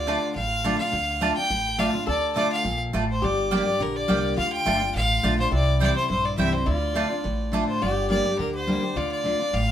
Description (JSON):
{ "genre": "bluegrass", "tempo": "209 BPM", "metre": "4/4", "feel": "swing 54% on 8ths", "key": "D minor", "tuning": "A4 = 440 Hz", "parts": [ { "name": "clear fiddle", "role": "melody", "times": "0.0-9.7 s", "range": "Bb4 to G5", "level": "-25 LUFS", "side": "equal", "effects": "none" }, { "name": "lap resonator guitar", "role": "second line", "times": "0.0-9.7 s", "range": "E4 to A4", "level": "-33 LUFS", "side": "left 3 dB", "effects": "none" }, { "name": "picked steel-string acoustic guitar", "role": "accompaniment", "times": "0.0-9.7 s", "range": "G2 to G4", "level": "-27 LUFS", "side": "left 1 dB", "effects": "none" }, { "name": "upright bass", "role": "bass", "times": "0.0-9.7 s", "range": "G1 to D2", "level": "-29 LUFS", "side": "equal", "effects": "none" }, { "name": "mandolin", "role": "stabs", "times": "0.1-7.6 s", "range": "A3 to A5", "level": "-28 LUFS", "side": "right 3 dB", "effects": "none" } ], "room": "wet studio ambience, RT60 0.4 s", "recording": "band playing live in one room", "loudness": "-21 LUFS", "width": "side -10 dB against mid", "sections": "0.0-7.8 A section; 7.8-9.7 A section", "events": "none", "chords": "0.0 Dm; 3.2 Gm; 4.4 Dm; 5.5 C; 6.7 Dm; 7.8 Gm; 9.0 Dm" }